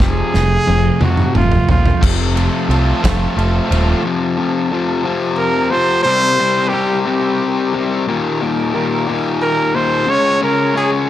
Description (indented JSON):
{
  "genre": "indie rock",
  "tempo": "60 BPM (dotted quarters)",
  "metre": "6/8",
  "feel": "straight",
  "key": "unclear",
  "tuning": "A4 = 440 Hz",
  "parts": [
    { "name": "clear trumpet", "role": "melody", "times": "0.0-2.0, 5.4-10.9 s", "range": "F4 to Db5", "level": "-17 LUFS", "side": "right 1 dB", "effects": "none" },
    { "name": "crunchy overdriven guitar", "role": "riff", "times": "0.0-4.0 s", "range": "F2 to F4", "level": "-24 LUFS", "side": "right 9 dB", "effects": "lush chorus, analog delay" },
    { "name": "fuzz guitar", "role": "riff", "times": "0.0-11.1 s", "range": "Eb2 to F4", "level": "-17 LUFS", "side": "left 4 dB", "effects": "distortion" },
    { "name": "growling picked electric bass", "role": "bass", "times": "0.0-3.9 s", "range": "Eb1 to F2", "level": "-16 LUFS", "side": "equal", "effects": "overdrive" },
    { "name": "loose indie drum kit", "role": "drums", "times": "0.0-3.9 s", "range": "crash cymbal, kick drum, ride cymbal, snare drum, toms", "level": "-18 LUFS", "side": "equal", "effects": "none" },
    { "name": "clear woodwind section", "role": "sustained chords", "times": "2.0-11.1 s", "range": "Eb3 to A5", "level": "-27 LUFS", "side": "right 2 dB", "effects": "none" }
  ],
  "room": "light reverb",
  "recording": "none",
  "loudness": "-13 LUFS",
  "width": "side -12 dB against mid",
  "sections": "0.0-2.0 A section; 2.0-4.0 B section; 4.0-11.1 C section",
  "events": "trumpet solo 0.0-2.0; drum fill 0.0-2.0",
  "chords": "0.0 F; 6.1 Cm; 8.1 Eb; 10.1 Db",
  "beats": "| 0.01 1.02 | 2.02 3.03 | 4.04 5.04 | 6.05 7.06 | 8.06 9.07 | 10.07 11.08"
}